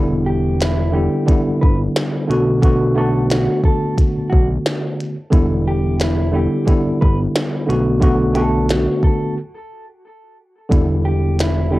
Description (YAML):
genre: hip hop, boom-bap hip-hop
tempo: 89 BPM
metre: 4/4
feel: swing 55% on 16ths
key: E minor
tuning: A4 = 440 Hz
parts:
  - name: tine electric piano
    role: accompaniment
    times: 0.0-11.8 s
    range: D3 to F#4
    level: -18 LUFS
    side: equal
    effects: overdrive, fast stereo tremolo, high-pass filter, low-pass filter, cassette tape
  - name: fat analog bass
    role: bass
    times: 0.0-11.8 s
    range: E1 to B1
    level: -20 LUFS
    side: equal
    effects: tube saturation
  - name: mellow electric guitar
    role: melody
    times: 0.3-11.8 s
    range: E4 to B4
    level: -25 LUFS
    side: equal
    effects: high-pass filter, low-pass filter, cassette tape, tape echo
  - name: minimal click drum kit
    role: drums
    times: 0.6-11.6 s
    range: hi-hat, kick drum, snare drum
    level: -17 LUFS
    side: equal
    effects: cassette tape
room: light reverb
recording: home recording on cassette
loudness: -14 LUFS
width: side -18 dB against mid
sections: 0.0-11.8 A section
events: break 9.4-10.7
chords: 0.0 Em7; 2.3 Bm7; 5.3 Em7; 7.7 Bm7; 10.7 Em7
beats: 0.60 1.28 1.95 | 2.63 3.30 3.97 4.65 | 5.32 6.00 6.67 7.34 | 8.02 8.69 9.37 10.04 | 10.72 11.39